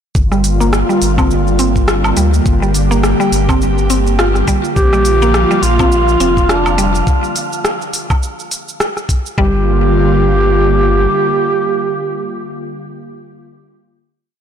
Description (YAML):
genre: organic downtempo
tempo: 104 BPM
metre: 4/4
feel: swing 57% on 16ths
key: G minor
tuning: A4 = 440 Hz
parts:
  - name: warm sub bass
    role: bass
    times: 0.1-11.1 s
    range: F1 to D2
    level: -15 LUFS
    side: equal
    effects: sidechain pumping
  - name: airy breathy pad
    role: sustained chords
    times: 0.2-12.4 s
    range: D3 to G4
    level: -18 LUFS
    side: equal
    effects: chorus, sidechain pumping
  - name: afro-pop drum kit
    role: drums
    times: 0.2-9.4 s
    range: cabasa, hi-hat, rim click, woodblock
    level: -20 LUFS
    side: equal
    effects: none
  - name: electronic kick drum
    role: drums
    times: 0.2-9.5 s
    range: none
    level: -14 LUFS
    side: equal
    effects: none
  - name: mallet-like synth pluck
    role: arpeggios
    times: 0.3-9.6 s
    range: G3 to F4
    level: -19 LUFS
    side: equal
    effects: chorus, digital delay
  - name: mellow duduk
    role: melody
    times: 4.8-12.4 s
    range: D4 to G4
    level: -16 LUFS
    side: right 1 dB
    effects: digital delay
  - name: wind-like tuned noise texture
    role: texture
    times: 5.2-7.1 s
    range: F5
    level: -24 LUFS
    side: right 5 dB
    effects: built-in reverb
room: moderate lush hall reverb, RT60 2.8 s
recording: blown-out, overdriven recording, overdrive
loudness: -11 LUFS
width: side -8 dB against mid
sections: 0.1-9.4 groove; 9.4-11.7 final chord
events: filter sweep on synth pluck 0.1-7.1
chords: 0.1 Gm7; 4.8 Bb; 7.1 N.C.; 9.4 Gm7